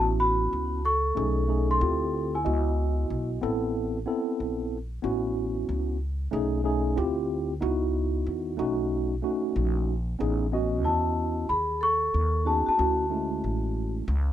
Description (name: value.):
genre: hip hop.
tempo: 93 BPM.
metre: 4/4.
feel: swing 65% on 16ths.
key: unclear.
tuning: A4 = 442 Hz.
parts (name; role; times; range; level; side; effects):
celesta; melody; 0.0-3.3, 10.8-13.9 s; G#5 to C#6; -27 LUFS; left 1 dB; none.
vibraphone with medium hard mallets; second line; 0.0-3.3, 10.8-13.9 s; E4 to A4; -33 LUFS; equal; none.
mellow tine electric piano; accompaniment; 0.0-14.0 s; G#3 to D#5; -28 LUFS; right 1 dB; medium stereo tremolo.
upright bass; bass; 0.0-14.3 s; A1 to E2; -29 LUFS; equal; none.
room: little or no reverb.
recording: rough home demo mix.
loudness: -24 LUFS.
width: side -11 dB against mid.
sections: 0.0-10.2 A section; 10.2-14.3 B section.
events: none.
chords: 0.0 A69; 1.2 B13; 1.8 Dm11; 2.5 C#m11; 3.4 Amadd9; 5.0 A69; 6.3 B13; 7.0 Dm11; 7.6 C#m11; 8.6 B9; 10.2 Amaj9#11; 12.8 Dmaj9.